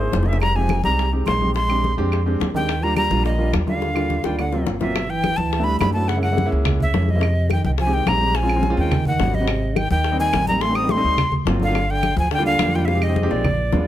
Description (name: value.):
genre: Afro-Cuban jazz.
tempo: 212 BPM.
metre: 4/4.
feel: straight.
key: Eb major.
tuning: A4 = 441 Hz.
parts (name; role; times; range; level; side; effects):
breathy bright jazz flute; melody; 0.0-13.9 s; C5 to Eb6; -23 LUFS; left 1 dB; analog delay.
dark trombone; second line; 0.0-13.9 s; G#2 to C4; -27 LUFS; right 5 dB; none.
warm grand piano; accompaniment; 0.0-13.9 s; F#3 to G#4; -25 LUFS; equal; none.
upright bass; bass; 0.0-13.9 s; F1 to Gb2; -22 LUFS; equal; none.
bongos; percussion; 0.1-13.8 s; none; -28 LUFS; left 7 dB; none.
congas; percussion; 0.1-13.9 s; none; -26 LUFS; left 1 dB; none.
claves; percussion; 0.4-13.6 s; none; -32 LUFS; right 5 dB; none.
room: light reverb.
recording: close, detailed microphones.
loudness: -17 LUFS.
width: side -12 dB against mid.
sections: 0.0-5.0 A section; 5.0-13.9 B section.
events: drum fill 0.0-0.4, 3.8-5.0, 12.9-13.9.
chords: 0.4 Fm9; 1.6 Bb13; 2.7 Ebmaj7; 4.4 D7alt; 5.0 G69; 6.1 Gb9; 7.2 Fm9; 8.4 Bbm9; 8.9 Eb7alt; 9.5 Abmaj7; 10.6 Am7b5; 11.2 D7alt; 11.8 Gm7; 12.9 Fm9.